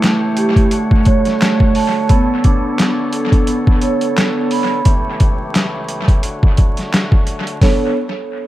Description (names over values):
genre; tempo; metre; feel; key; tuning
hip hop, boom-bap hip-hop; 87 BPM; 4/4; swing 58% on 16ths; B minor; A4 = 438 Hz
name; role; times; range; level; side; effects
vibraphone with soft mallets; accompaniment; 0.0-7.9 s; A3 to B5; -17 LUFS; right 2 dB; high-pass filter, low-pass filter, dub echo
overdriven tonewheel organ; sustained chords; 0.0-7.9 s; C#2 to C#5; -25 LUFS; left 1 dB; lush chorus, high-pass filter, low-pass filter
boom bap sampler-style drum kit; drums; 0.0-7.8 s; handclaps, hi-hat, kick drum, snare drum; -14 LUFS; equal; overdrive, dub echo
room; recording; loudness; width
light reverb, digital ambience; echo-heavy mix, vinyl crackle; -12 LUFS; side -15 dB against mid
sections
0.0-7.6 A section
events
none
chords
0.0 A7/C#; 0.7 Dmaj7; 2.1 Bm9; 4.9 A7/C#; 6.2 Dmaj7; 7.6 Bm9